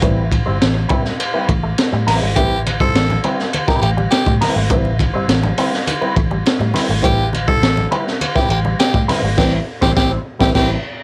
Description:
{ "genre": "funk", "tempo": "103 BPM", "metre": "4/4", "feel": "straight", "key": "A minor", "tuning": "A4 = 439 Hz", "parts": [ { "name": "mellow electric guitar", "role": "accompaniment", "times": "0.0-10.8 s", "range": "G3 to C5", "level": "-24 LUFS", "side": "equal", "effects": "wah, cassette tape" }, { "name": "electric guitar with an envelope filter", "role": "riff", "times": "0.0-9.4 s", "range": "G3 to C4", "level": "-28 LUFS", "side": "equal", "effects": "cassette tape" }, { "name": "vintage muted fingered electric bass", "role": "bass", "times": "0.0-10.8 s", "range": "G1 to A2", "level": "-21 LUFS", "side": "equal", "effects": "none" }, { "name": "crunchy breakbeat drum kit", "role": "drums", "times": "0.0-10.7 s", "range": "crash cymbal, hi-hat, kick drum, ride cymbal, snare drum", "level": "-20 LUFS", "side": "equal", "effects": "cassette tape" }, { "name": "raspy tenor saxophone", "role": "second line", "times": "2.4-10.7 s", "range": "G4 to A4", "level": "-21 LUFS", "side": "equal", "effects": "cassette tape" }, { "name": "congas", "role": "percussion", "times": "2.4-9.2 s", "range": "none", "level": "-28 LUFS", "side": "equal", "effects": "none" } ], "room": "light reverb", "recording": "home recording on cassette", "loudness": "-16 LUFS", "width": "mono", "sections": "0.0-11.0 A section", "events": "band accent 9.4-11.0", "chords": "0.0 Am9", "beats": "| 0.02 0.61 1.19 1.78 | 2.36 2.95 3.53 4.12 | 4.70 5.29 5.87 6.46 | 7.04 7.63 8.21 8.80 | 9.38 9.97 10.55" }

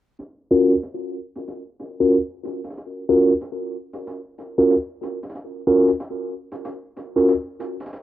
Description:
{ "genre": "glitch hop", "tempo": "93 BPM", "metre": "4/4", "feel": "swing 62% on 16ths", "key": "unclear", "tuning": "A4 = 438 Hz", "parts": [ { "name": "hi-hat", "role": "drums", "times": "0.2-8.0 s", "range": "none", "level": "-38 LUFS", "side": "right 1 dB", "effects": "cassette tape" }, { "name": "mellow tine electric piano", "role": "stabs", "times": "0.5-7.3 s", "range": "Db4 to Bb4", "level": "-19 LUFS", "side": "equal", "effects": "medium stereo tremolo, low-pass filter, cassette tape, tape echo" } ], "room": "moderate studio reverb, RT60 0.5 s", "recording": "home recording on cassette, low-pass filter", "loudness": "-18 LUFS", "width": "side -13 dB against mid", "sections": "0.2-8.0 A section", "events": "filter sweep on tine electric piano 0.2-8.0; filter sweep 0.2-8.0", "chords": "0.2 Dbadd11", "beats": "| 0.19 0.84 1.48 2.13 | 2.77 3.42 4.06 4.71 | 5.35 6.00 6.64 7.29 | 7.93" }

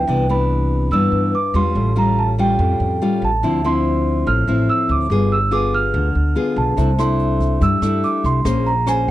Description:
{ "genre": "bossa nova", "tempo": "143 BPM", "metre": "4/4", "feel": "straight", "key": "C major", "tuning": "A4 = 440 Hz", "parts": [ { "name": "large celesta", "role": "melody", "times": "0.0-9.1 s", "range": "G5 to F6", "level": "-21 LUFS", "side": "right 4 dB", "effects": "none" }, { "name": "nylon-string guitar", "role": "accompaniment", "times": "0.0-9.1 s", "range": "G2 to C5", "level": "-20 LUFS", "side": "left 3 dB", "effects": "none" }, { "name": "upright bass", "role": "bass", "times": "0.0-9.1 s", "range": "G1 to G2", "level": "-19 LUFS", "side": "equal", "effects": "none" }, { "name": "jazz brush drum kit", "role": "drums", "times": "6.8-9.1 s", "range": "hi-hat, kick drum, rim click", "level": "-25 LUFS", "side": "equal", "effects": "none" } ], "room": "little or no reverb", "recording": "dry, close 1970s-style studio recording", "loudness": "-15 LUFS", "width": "side -14 dB against mid", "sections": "0.1-9.1 A section", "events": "none", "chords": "0.1 Cmaj9; 1.8 Aaug7; 3.4 Dm9; 5.1 G7b9; 6.8 C69; 8.5 Bbm9", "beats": "| 0.08 0.50 0.92 1.33 | 1.75 2.17 2.59 3.01 | 3.43 3.85 4.26 4.68 | 5.10 5.52 5.94 6.36 | 6.78 7.20 7.61 8.03 | 8.45 8.87" }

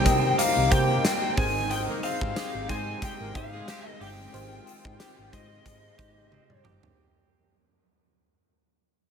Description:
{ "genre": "1980s-style pop", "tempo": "91 BPM", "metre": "4/4", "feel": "swing 55% on 16ths", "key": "unclear", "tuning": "A4 = 440 Hz", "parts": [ { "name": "lead guitar through a small cranked amp", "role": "melody", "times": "0.0-6.6 s", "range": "Eb5 to Ab5", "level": "-29 LUFS", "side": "left 4 dB", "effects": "overdrive" }, { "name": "FM electric piano with soft pad layer", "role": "accompaniment", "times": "0.0-7.0 s", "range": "Ab3 to Eb5", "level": "-34 LUFS", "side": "left 1 dB", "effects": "chorus" }, { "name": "warm analog pad", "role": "sustained chords", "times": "0.0-7.0 s", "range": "G3 to F4", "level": "-37 LUFS", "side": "equal", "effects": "chorus" }, { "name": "direct-recorded clean electric guitar", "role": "riff", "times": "0.0-7.5 s", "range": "Eb3 to G4", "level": "-36 LUFS", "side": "right 8 dB", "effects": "lush chorus" }, { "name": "hollow-body short-scale picked electric bass", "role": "bass", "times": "0.0-6.9 s", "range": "G1 to C3", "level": "-30 LUFS", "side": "right 1 dB", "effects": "none" }, { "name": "huge arena drum kit", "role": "drums", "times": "0.1-7.0 s", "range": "hi-hat, kick drum, snare drum, tambourine, toms", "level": "-28 LUFS", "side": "equal", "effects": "none" }, { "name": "warm horn section", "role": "stabs", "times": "1.9-3.9 s", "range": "G3 to C5", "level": "-44 LUFS", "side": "left 1 dB", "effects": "none" } ], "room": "light reverb, small room ambience", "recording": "none", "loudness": "-23 LUFS", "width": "side -7 dB against mid", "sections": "0.0-7.0 A section", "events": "fade-out 0.0-7.0; drum fill 6.3-7.0", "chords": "0.0 Cm7; 1.4 Abmaj7", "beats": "0.39 1.04 | 1.70 2.36 3.02 3.68 | 4.34 5.00 5.66 6.32" }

